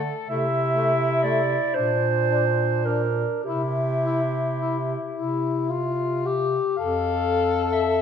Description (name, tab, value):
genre	classical, lyrical piece for single-reed quartet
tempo	33-45 BPM (dotted quarters)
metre	6/8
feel	rubato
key	F major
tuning	A4 = 440 Hz
part	mellow soprano saxophone	melody	0.0-8.0 s	D4 to F5	-29 LUFS	left 8 dB	none
part	dark clarinet	second line	0.0-8.0 s	G4 to E5	-26 LUFS	right 5 dB	none
part	dark tenor saxophone	accompaniment	0.0-8.0 s	A3 to A4	-27 LUFS	left 6 dB	none
part	mellow bass clarinet	bass	0.0-8.0 s	F2 to D3	-26 LUFS	right 1 dB	none
room	wet recital hall reverb, RT60 1.6 s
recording	none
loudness	-21 LUFS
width	side -7 dB against mid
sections	0.0-6.8 A section; 6.8-8.0 A section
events	none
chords	0.3 Am/C; 1.8 Bb; 3.5 C; 6.8 F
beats	| 0.30 1.76 | 3.46 5.15 | 6.78